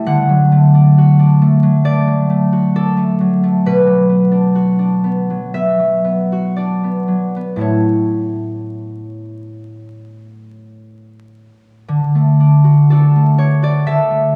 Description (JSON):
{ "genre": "classical, solo harp piece", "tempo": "55-68 BPM", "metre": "4/4", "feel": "rubato", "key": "D major", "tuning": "A4 = 440 Hz", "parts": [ { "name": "concert harp", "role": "solo", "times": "0.0-14.4 s", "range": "A2 to F#5", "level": "-14 LUFS", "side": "equal", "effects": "none" } ], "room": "wet recital hall reverb, RT60 1.4 s", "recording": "vinyl crackle, studio reverb", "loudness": "-13 LUFS", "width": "mono", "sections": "0.0-11.9 A section; 11.9-14.4 B section", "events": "none", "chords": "0.1 D; 3.7 Bm; 7.6 A; 11.9 D" }